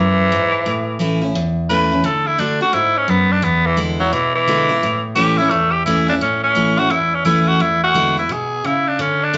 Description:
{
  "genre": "rock",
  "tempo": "173 BPM",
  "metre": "4/4",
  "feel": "swing 64% on 8ths",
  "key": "A major",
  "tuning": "A4 = 443 Hz",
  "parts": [
    { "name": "growling tenor saxophone", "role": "melody", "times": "0.0-9.4 s", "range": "E3 to B4", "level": "-18 LUFS", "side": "equal", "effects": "none" },
    { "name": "picked steel-string acoustic guitar", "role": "accompaniment", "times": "0.0-9.4 s", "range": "E2 to F#4", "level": "-21 LUFS", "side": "equal", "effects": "none" }
  ],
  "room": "moderate large studio reverb, RT60 0.8 s",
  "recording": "band playing live in one room, nothing above 7.7 kHz",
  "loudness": "-17 LUFS",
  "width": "mono",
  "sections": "0.0-6.2 A section; 6.2-9.4 B section",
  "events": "tenor saxophone solo 0.0-6.2",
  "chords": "0.0 E; 0.7 A; 2.0 D; 3.4 E7; 4.8 A; 7.6 E7",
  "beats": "0.32 | 0.66 1.01 1.35 1.70 | 2.05 2.39 2.74 3.09 | 3.43 3.78 4.13 4.47 | 4.82 5.17 5.51 5.86 | 6.21 6.56 6.90 7.25 | 7.60 7.95 8.29 8.64 | 8.99 9.33"
}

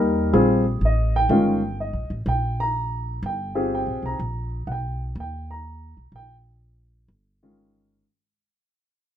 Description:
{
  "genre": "jazz",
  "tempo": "124 BPM",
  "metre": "4/4",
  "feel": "swing 68% on 8ths",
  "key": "unclear",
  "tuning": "A4 = 441 Hz",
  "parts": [
    { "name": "warm baby grand piano", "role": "accompaniment", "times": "0.0-8.0 s", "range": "Eb3 to Bb5", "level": "-22 LUFS", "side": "left 1 dB", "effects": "none" },
    { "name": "upright bass", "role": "bass", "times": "0.0-8.0 s", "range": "G1 to Eb2", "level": "-26 LUFS", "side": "equal", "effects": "none" }
  ],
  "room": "light reverb",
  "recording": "minimal, uncompressed stereo recording",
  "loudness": "-21 LUFS",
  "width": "side -10 dB against mid",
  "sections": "0.3-8.1 A section",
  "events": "fade-out 0.3-8.1",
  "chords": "0.3 Eb",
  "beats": "| 0.33 0.81 1.29 1.78 | 2.26 2.74 3.22 3.71 | 4.19 4.67 5.16 5.64 | 6.12 6.61 7.09 7.58"
}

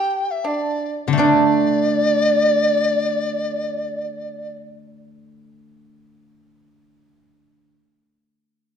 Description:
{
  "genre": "chinese traditional, Chinese chamber ensemble",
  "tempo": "77 BPM",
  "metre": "2/4",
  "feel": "rubato",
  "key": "unclear",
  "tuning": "A4 = 440 Hz",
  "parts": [
    { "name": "large dizi", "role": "melody", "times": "0.0-4.6 s", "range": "D5 to G5", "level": "-20 LUFS", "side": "left 1 dB", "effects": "none" },
    { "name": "pipa", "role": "second line", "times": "0.0-4.6 s", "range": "D4 to G4", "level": "-20 LUFS", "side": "right 5 dB", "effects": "none" },
    { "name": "steel-string zither", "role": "accompaniment", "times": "1.1-7.7 s", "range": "D3 to D4", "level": "-23 LUFS", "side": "left 3 dB", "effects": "none" }
  ],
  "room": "wet recital hall reverb, RT60 1.4 s",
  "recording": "dark, warm production",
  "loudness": "-17 LUFS",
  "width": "side -7 dB against mid",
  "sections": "0.0-1.2 A section; 1.2-4.3 B section",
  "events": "slowing down 0.0-1.2",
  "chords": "none",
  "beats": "0.44 | 1.19 1.97 | 2.74 3.52"
}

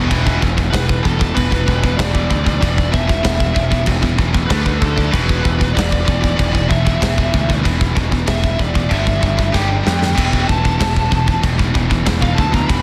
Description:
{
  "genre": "heavy metal",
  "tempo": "95 BPM",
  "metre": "4/4",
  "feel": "straight",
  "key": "E minor",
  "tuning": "A4 = 440 Hz",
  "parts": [
    { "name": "fuzz guitar", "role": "riff", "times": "0.0-12.8 s", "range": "E2 to D4", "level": "-25 LUFS", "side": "equal", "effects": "distortion" },
    { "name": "heavy high-gain guitar", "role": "riff", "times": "0.0-12.8 s", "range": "E2 to D4", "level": "-24 LUFS", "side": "equal", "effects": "distortion" },
    { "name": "growling picked electric bass", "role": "bass", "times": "0.0-12.8 s", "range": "E1 to F2", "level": "-22 LUFS", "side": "equal", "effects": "overdrive" },
    { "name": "big rock drum kit", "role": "drums", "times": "0.1-12.8 s", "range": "crash cymbal, kick drum, snare drum", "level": "-20 LUFS", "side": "equal", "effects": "none" },
    { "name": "bluesy overdriven lead guitar", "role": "melody", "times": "0.7-12.8 s", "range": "A4 to B5", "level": "-25 LUFS", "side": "equal", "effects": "distortion" }
  ],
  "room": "little or no reverb",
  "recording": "dense, heavily limited modern master",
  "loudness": "-16 LUFS",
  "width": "mono",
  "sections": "0.1-12.8 A section",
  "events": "lead electric guitar solo 0.1-12.8; drum fill 9.5-10.2",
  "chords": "0.1 E5; 4.5 D5; 5.1 E5; 8.9 G5; 10.2 E5",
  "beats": "| 0.11 0.73 1.36 1.99 | 2.62 3.25 3.88 4.51 | 5.14 5.77 6.39 7.03 | 7.66 8.28 8.91 9.54 | 10.17 10.80 11.43 12.06 | 12.70"
}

